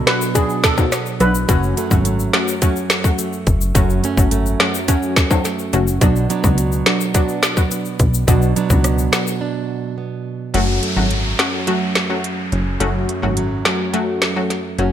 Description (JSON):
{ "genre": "dancehall", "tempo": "106 BPM", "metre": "4/4", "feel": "straight", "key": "F# minor", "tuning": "A4 = 440 Hz", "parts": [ { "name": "nylon-string guitar", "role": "arpeggios", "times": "0.0-14.9 s", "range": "F#2 to D4", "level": "-23 LUFS", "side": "right 5 dB", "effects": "none" }, { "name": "plucky analog bass", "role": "bass", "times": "0.0-14.9 s", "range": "F#1 to C#2", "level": "-18 LUFS", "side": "equal", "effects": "none" }, { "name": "steel pan", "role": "melody", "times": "0.1-1.3 s", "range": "G#4 to B4", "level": "-22 LUFS", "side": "equal", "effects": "ping-pong delay" }, { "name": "analog pluck", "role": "accompaniment", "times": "0.1-14.9 s", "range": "F#3 to F#4", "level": "-22 LUFS", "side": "left 2 dB", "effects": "chorus, sidechain pumping" }, { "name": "island pop drum kit", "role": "drums", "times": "0.1-14.9 s", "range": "hi-hat, kick drum, rim click, snare drum", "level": "-17 LUFS", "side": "equal", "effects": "gated reverb" }, { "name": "egg shaker and timbales", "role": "percussion", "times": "0.2-9.4 s", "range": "none", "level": "-27 LUFS", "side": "left 8 dB", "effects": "none" }, { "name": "downlifter", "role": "sound effects", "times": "10.5-14.9 s", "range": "none", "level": "-27 LUFS", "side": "left 1 dB", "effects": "none" } ], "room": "light reverb", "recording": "bright 1980s-style digital production", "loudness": "-15 LUFS", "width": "side -10 dB against mid", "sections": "0.0-10.5 A section; 10.5-14.9 B section", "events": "break 9.4-10.5; kick muted 10.5-14.9", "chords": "0.0 Bm; 1.5 F#m; 6.0 Bm; 10.5 F#m" }